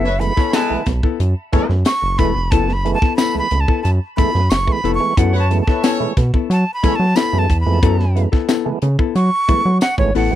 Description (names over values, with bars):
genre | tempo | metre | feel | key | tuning
funk | 90 BPM | 4/4 | straight | F# minor | A4 = 440 Hz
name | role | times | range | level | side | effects
breathy bright jazz flute | melody | 0.0-10.4 s | C#5 to C#6 | -21 LUFS | right 1 dB | tape echo
clear horn section | second line | 0.0-6.9 s | G#3 to F#5 | -23 LUFS | equal | none
hollow-body jazz guitar | accompaniment | 0.0-10.4 s | B3 to A4 | -21 LUFS | left 11 dB | none
percussive tonewheel organ | stabs | 0.0-10.4 s | E3 to B3 | -23 LUFS | right 8 dB | overdrive, chorus vibrato, slow rotary speaker
round analog bass | bass | 0.0-10.4 s | E1 to F#3 | -17 LUFS | right 1 dB | none
tight funk drum kit | drums | 0.0-10.3 s | hi-hat, kick drum, snare drum | -17 LUFS | equal | none
tambourine | percussion | 0.5-10.0 s | none | -32 LUFS | left 5 dB | none
room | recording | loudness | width
little or no reverb | dry, close 1970s-style studio recording | -14 LUFS | side -12 dB against mid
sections
0.0-10.4 A section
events
flute solo 0.0-10.4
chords
0.0 F#m11